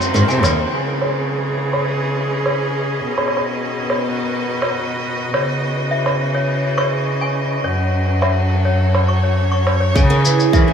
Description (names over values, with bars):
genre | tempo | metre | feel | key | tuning
folktronica | 104 BPM | 4/4 | straight | C# minor | A4 = 440 Hz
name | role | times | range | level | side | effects
rich string quartet | sustained chords | 0.0-10.7 s | D#3 to D#5 | -23 LUFS | equal | none
shaker and woodblock | drums | 0.0-10.7 s | none | -24 LUFS | right 1 dB | low-pass filter on perc, low-pass filter on snare, low-pass filter on room
picked old ladder-braced acoustic guitar | arpeggios | 0.1-0.6, 10.0-10.7 s | B#2 to E3 | -24 LUFS | right 3 dB | analog chorus, diffuse ambient delay
rich cello | bass | 0.1-10.7 s | D#2 to E3 | -19 LUFS | equal | none
toy piano | second line | 0.3-0.4, 5.3-10.7 s | C#5 to C#6 | -25 LUFS | left 2 dB | wide subtle chorus, diffuse ambient delay
breathy flugelhorn | melody | 10.0-10.7 s | G#4 | -21 LUFS | right 4 dB | vintage 12-bit sampler grit
electronic kick drum | drums | 10.0-10.6 s | none | -14 LUFS | equal | none
room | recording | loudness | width
moderate huge ambient reverb, RT60 9.1 s | dreamy mix soaked in reverb | -16 LUFS | side -7 dB against mid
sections
0.7-10.0 A section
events
kick drops out 0.1-0.7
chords
0.0 G#; 0.7 C#madd9; 3.0 B; 5.3 C#madd9; 7.6 F#m; 10.0 C#madd9